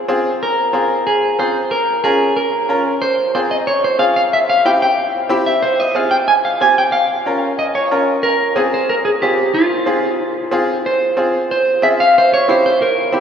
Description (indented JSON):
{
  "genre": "latin",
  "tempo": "184 BPM",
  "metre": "4/4",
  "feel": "straight",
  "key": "F minor",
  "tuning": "A4 = 440 Hz",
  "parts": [
    { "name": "clean electric guitar", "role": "melody", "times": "0.0-13.2 s", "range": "F4 to Ab5", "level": "-14 LUFS", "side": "equal", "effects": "spring reverb" },
    { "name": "bright upright piano", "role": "accompaniment", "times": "0.1-13.2 s", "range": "C4 to Bb4", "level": "-19 LUFS", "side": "equal", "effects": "none" }
  ],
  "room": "wet cathedral reverb, RT60 5.1 s",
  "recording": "recorded in a church or concert hall",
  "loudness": "-13 LUFS",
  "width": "side -7 dB against mid",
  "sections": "0.4-10.8 A section; 10.8-13.2 B section",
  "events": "none",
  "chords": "0.4 Fm; 1.7 Bbm; 3.0 Fm; 4.3 C; 5.6 Fm; 6.9 Bbm; 8.2 Fm; 12.2 C7"
}